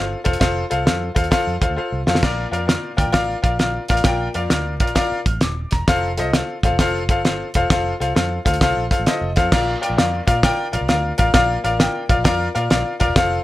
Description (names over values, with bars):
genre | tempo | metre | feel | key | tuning
uptempo 1960s-style soul | 132 BPM | 4/4 | swing 66% on 8ths | Bb major | A4 = 443 Hz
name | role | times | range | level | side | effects
bright upright piano | accompaniment | 0.0-13.4 s | Bb2 to F6 | -20 LUFS | left 2 dB | none
vintage muted fingered electric bass | bass | 0.0-13.4 s | Eb1 to Bb2 | -25 LUFS | equal | none
cloth-damped thuddy drum kit | drums | 0.3-13.3 s | crash cymbal, hi-hat, kick drum, snare drum, splash cymbal | -19 LUFS | right 1 dB | none
room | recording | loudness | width
light reverb | none | -16 LUFS | side -16 dB against mid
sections
0.0-9.5 A section; 9.5-13.4 B section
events
drum fill 1.8-2.2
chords
0.0 F; 2.2 Bb; 5.9 F; 9.5 Bb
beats
| 0.41 0.87 1.32 1.78 | 2.23 2.69 3.14 3.60 | 4.05 4.51 4.96 5.42 | 5.88 6.33 6.79 7.24 | 7.70 8.15 8.61 9.07 | 9.52 9.98 10.43 10.89 | 11.35 11.80 12.26 12.71 | 13.16